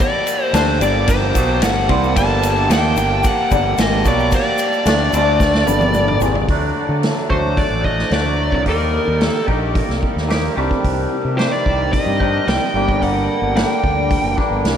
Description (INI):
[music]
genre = psychedelic rock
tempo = 110 BPM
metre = 4/4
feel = straight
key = unclear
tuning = A4 = 438 Hz
[part]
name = fuzz lead guitar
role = melody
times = 0.0-14.3 s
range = Bb4 to A5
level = -20 LUFS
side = equal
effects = distortion, diffuse ambient delay
[part]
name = hand-pumped harmonium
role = sustained chords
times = 0.0-14.8 s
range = Eb3 to A5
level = -24 LUFS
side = right 4 dB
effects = none
[part]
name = vintage drum kit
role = drums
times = 0.0-14.8 s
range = hi-hat, kick drum, ride cymbal, snare drum, toms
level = -21 LUFS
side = equal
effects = none
[part]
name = egg shaker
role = percussion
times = 0.0-6.3 s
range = none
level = -35 LUFS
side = left 16 dB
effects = none
[part]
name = twangy electric guitar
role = riff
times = 0.5-14.8 s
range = G2 to G4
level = -21 LUFS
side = left 2 dB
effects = phaser
[part]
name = fuzz fingered electric bass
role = bass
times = 0.5-14.8 s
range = F#1 to D3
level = -20 LUFS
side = equal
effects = overdrive
[sound]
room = moderate huge ambient reverb, RT60 7.9 s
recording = dreamy mix soaked in reverb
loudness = -14 LUFS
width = side -8 dB against mid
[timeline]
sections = 0.0-6.5 A section; 6.5-14.8 B section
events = drum fill 5.4-6.5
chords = 0.0 Gmadd9; 5.1 D5; 5.7 Gmadd9; 6.5 D; 8.7 Eb; 10.6 Cmadd9; 12.7 Gm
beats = | 0.00 0.54 1.08 1.62 | 2.16 2.70 3.24 3.78 | 4.32 4.86 5.40 5.94 | 6.49 7.03 7.57 8.12 | 8.66 9.20 9.75 10.29 | 10.84 11.38 11.93 12.47 | 13.02 13.56 14.11 14.65